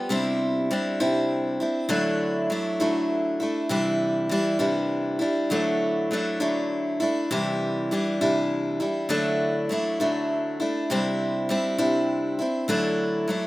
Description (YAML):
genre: rock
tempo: 67 BPM (dotted quarters)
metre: 6/8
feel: straight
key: unclear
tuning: A4 = 440 Hz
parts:
  - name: picked steel-string acoustic guitar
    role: solo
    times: 0.0-13.5 s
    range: C3 to G4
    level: -22 LUFS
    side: equal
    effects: none
room: light reverb, studio reverb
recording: rough home demo mix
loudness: -22 LUFS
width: side -18 dB against mid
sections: 0.1-13.5 A section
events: none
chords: 0.1 Cadd9; 1.9 Dadd9; 3.7 Cadd9; 5.5 Dadd9; 7.3 Cadd9; 9.1 Dadd9; 10.9 Cadd9; 12.7 Dadd9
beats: | 0.11 1.01 | 1.91 2.81 | 3.71 4.60 | 5.50 6.40 | 7.30 8.20 | 9.10 10.00 | 10.90 11.80 | 12.69